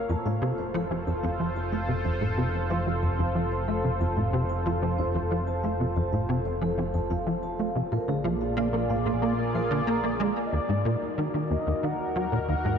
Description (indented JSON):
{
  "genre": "ambient, sequencer-driven space music",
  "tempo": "92 BPM",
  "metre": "4/4",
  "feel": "straight",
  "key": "unclear",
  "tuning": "A4 = 440 Hz",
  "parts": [
    { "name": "sweeping resonant pad", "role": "sustained chords", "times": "0.0-12.8 s", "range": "Bb3 to D5", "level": "-31 LUFS", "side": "equal", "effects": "chorus" },
    { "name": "vibraphone with soft mallets", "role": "arpeggios", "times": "0.0-10.5 s", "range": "Ab4 to Bb5", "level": "-36 LUFS", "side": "right 1 dB", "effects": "auto-pan, tape echo" },
    { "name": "fat analog bass", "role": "bass", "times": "0.0-12.8 s", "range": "F1 to Eb2", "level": "-33 LUFS", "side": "equal", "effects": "none" },
    { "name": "tight sequencer bass", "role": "riff", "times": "0.1-12.8 s", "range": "Eb2 to Bb3", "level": "-28 LUFS", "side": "equal", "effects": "ensemble chorus, tape echo" },
    { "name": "expressive synth lead", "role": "melody", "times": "10.5-12.8 s", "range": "D5 to Gb5", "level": "-33 LUFS", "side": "left 2 dB", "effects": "chorus, tape echo" }
  ],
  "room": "wet huge ambient reverb, RT60 8.1 s",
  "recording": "dark, warm production",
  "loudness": "-25 LUFS",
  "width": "side -7 dB against mid",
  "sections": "0.0-10.5 A section; 10.5-12.8 B section",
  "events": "filter sweep on analog synth bass 0.0-10.5",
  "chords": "0.1 F; 7.9 Bb7; 10.5 Ebm"
}